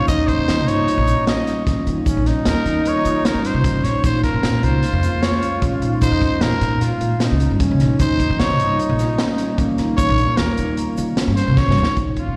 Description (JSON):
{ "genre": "progressive instrumental, band music in an uneven meter", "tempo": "152 BPM", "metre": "5/4", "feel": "straight", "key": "unclear", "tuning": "A4 = 440 Hz", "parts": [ { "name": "growling trumpet", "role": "melody", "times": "0.0-12.4 s", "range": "F4 to Eb5", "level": "-26 LUFS", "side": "equal", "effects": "slapback echo, tape echo" }, { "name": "warm flugelhorn", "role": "second line", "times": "0.0-11.8 s", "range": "Bb3 to F4", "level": "-28 LUFS", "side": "equal", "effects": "slapback echo" }, { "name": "dark analog pad", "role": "accompaniment", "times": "0.0-11.9 s", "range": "G3 to F4", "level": "-29 LUFS", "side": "equal", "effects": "chorus, slapback echo" }, { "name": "vibraphone with soft mallets", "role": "arpeggios", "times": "0.1-12.4 s", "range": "Db4 to F4", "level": "-27 LUFS", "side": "equal", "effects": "slapback echo" }, { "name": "upright bass", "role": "bass", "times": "0.1-12.4 s", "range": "G1 to Eb3", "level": "-22 LUFS", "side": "equal", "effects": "none" }, { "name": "crunchy breakbeat drum kit", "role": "drums", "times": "0.1-12.3 s", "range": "hi-hat, kick drum, snare drum", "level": "-25 LUFS", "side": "equal", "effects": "none" }, { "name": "tube shaker", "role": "percussion", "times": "0.1-11.9 s", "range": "none", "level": "-48 LUFS", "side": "equal", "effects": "none" } ], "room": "light reverb, small room ambience", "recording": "live gig heard through the venue's PA, recital hall reverb", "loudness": "-18 LUFS", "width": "mono", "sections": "0.0-12.0 A section", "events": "trumpet solo 0.0-12.0; drum fill 11.6-12.0", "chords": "0.1 Eb7; 4.0 Bbm7; 8.0 Eb7", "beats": "| 0.09 0.48 0.88 1.27 1.67 | 2.06 2.46 2.85 3.25 3.65 | 4.04 4.44 4.83 5.23 5.63 | 6.02 6.42 6.82 7.21 7.61 | 8.00 8.40 8.80 9.19 9.59 | 9.98 10.38 10.78 11.18 11.57 | 11.97" }